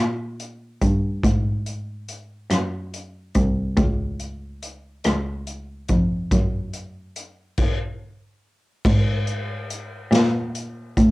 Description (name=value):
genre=slow gospel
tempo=47 BPM (dotted quarters)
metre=6/8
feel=straight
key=unclear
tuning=A4 = 441 Hz
part: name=warm cello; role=bass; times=0.0-11.1 s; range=B#1 to A#2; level=-22 LUFS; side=equal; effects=none
part: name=swinging big-band drum kit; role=drums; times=0.4-11.1 s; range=crash cymbal, hi-hat, kick drum, rim click, snare drum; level=-23 LUFS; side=equal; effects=cassette tape
room=little or no reverb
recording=home recording on cassette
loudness=-20 LUFS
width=side -20 dB against mid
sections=0.0-8.9 A section; 8.9-11.1 B section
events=none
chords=none